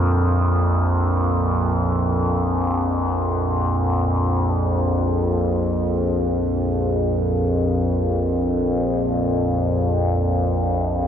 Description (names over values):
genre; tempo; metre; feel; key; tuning
ambient; free time; none; none; unclear; A4 = 442 Hz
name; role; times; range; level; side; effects
overtone-sweeping drone; solo; 0.0-11.1 s; Bb1 to F2; -18 LUFS; equal; chorus, built-in reverb, tape echo
room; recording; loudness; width
wet huge ambient reverb, RT60 8.3 s; none; -18 LUFS; side -8 dB against mid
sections
0.0-4.5 A section; 4.5-11.1 B section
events
none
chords
0.0 Bb5